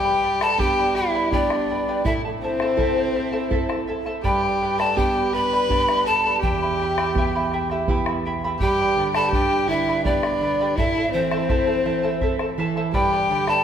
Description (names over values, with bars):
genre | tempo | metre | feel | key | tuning
andean folk, Andean ensemble | 82 BPM | 3/4 | straight | unclear | A4 = 440 Hz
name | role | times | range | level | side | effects
mellow hollow pan flute | melody | 0.0-13.6 s | C5 to B5 | -23 LUFS | left 1 dB | none
warm violin | second line | 0.0-13.6 s | C4 to B4 | -26 LUFS | left 1 dB | none
charango | accompaniment | 0.0-13.6 s | E4 to B5 | -26 LUFS | right 1 dB | none
nylon-string guitar | accompaniment | 0.0-13.6 s | E2 to A4 | -28 LUFS | right 4 dB | none
bombo | percussion | 0.4-13.6 s | none | -28 LUFS | equal | none
room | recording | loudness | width
wet scoring stage reverb, RT60 1.8 s | none | -19 LUFS | side -8 dB against mid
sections
0.0-8.6 A section; 8.6-13.6 A section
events
none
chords
0.0 G; 2.1 Am; 4.2 G; 6.4 Em; 8.6 G; 10.8 Am; 12.9 G